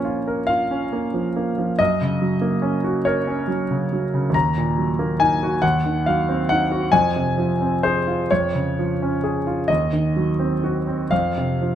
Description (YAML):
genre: classical, romantic nocturne for solo piano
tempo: 37-48 BPM (dotted quarters)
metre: 12/8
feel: rubato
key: Bb minor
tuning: A4 = 440 Hz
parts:
  - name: clear concert grand piano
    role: solo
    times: 0.0-11.8 s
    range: Eb2 to Bb5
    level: -18 LUFS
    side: equal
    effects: none
room: moderate recital hall reverb, RT60 1.5 s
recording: close, detailed microphones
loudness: -18 LUFS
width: side -10 dB against mid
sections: 0.0-11.8 A section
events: none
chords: 0.0 Bbm; 1.8 Gb; 4.3 Ebm; 5.6 Cdim/Eb; 6.9 Fm; 8.3 Db/F; 9.7 Cdim/Eb; 11.1 F5